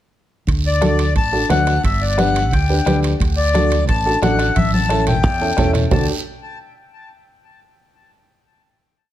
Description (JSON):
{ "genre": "latin, cumbia", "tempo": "177 BPM", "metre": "4/4", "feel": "straight", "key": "D major", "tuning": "A4 = 441 Hz", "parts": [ { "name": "fingered electric bass", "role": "bass", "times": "0.5-6.1 s", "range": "G1 to E2", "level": "-19 LUFS", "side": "equal", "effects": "none" }, { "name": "bombo", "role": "percussion", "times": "0.5-6.0 s", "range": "none", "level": "-22 LUFS", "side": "right 1 dB", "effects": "none" }, { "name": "congas", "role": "percussion", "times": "0.5-6.0 s", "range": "none", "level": "-23 LUFS", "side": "left 2 dB", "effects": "none" }, { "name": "guiro", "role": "percussion", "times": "0.5-6.0 s", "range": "none", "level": "-31 LUFS", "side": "right 7 dB", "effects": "none" }, { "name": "timbales", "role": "percussion", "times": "0.5-6.0 s", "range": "none", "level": "-28 LUFS", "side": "right 7 dB", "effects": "none" }, { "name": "accordion", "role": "melody", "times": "0.7-6.1 s", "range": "D5 to A5", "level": "-20 LUFS", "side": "left 3 dB", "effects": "tape echo" }, { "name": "warm upright piano", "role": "accompaniment", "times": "0.8-6.1 s", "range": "C#4 to B4", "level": "-22 LUFS", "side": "right 2 dB", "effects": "none" } ], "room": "light reverb", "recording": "none", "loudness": "-14 LUFS", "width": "side -12 dB against mid", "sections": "0.5-5.9 A section; 5.9-7.3 final chord", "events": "drum fill 4.6-5.9", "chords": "0.5 D; 1.8 G; 3.2 D; 4.6 A7; 5.9 D", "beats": "| 0.48 0.82 1.16 1.50 | 1.84 2.18 2.52 2.86 | 3.20 3.54 3.88 4.22 | 4.56 4.90 5.24 5.58 | 5.92" }